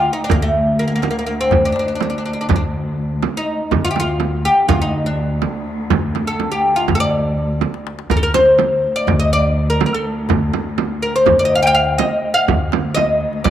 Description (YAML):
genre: Turkish makam ensemble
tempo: 246 BPM (eighths)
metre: 9/8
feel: straight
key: D makam kurdi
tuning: A4 = 444 Hz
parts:
  - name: oud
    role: melody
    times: 0.0-13.5 s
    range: A3 to G5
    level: -16 LUFS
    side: left 1 dB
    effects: none
  - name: upright bass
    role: bass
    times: 0.0-13.5 s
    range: D2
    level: -20 LUFS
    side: equal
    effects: none
  - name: warm studio cello section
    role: drone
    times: 0.0-13.5 s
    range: D2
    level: -27 LUFS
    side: equal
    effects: none
  - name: darbuka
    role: percussion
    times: 0.2-13.5 s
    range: none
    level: -26 LUFS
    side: left 4 dB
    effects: none
  - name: frame drum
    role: percussion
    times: 0.3-13.5 s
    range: none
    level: -20 LUFS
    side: right 8 dB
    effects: none
room: wet spring reverb, RT60 2.5 s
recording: 1960s-style stereo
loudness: -14 LUFS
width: side -11 dB against mid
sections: 0.0-13.5 A section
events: drum fill 7.6-8.1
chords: none